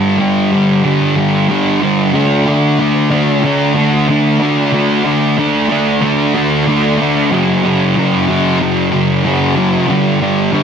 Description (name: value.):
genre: rock.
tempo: 93 BPM.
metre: 4/4.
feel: straight.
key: D major.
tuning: A4 = 441 Hz.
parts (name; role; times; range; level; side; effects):
thick fuzz guitar; solo; 0.0-10.6 s; F#2 to D4; -11 LUFS; equal; distortion, wide subtle chorus.
room: moderate recital hall reverb, RT60 1.6 s, digital ambience.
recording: none.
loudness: -11 LUFS.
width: side -7 dB against mid.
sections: 0.0-10.6 A section.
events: none.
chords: 0.0 G5; 2.1 D5; 7.3 F#5; 9.9 G5.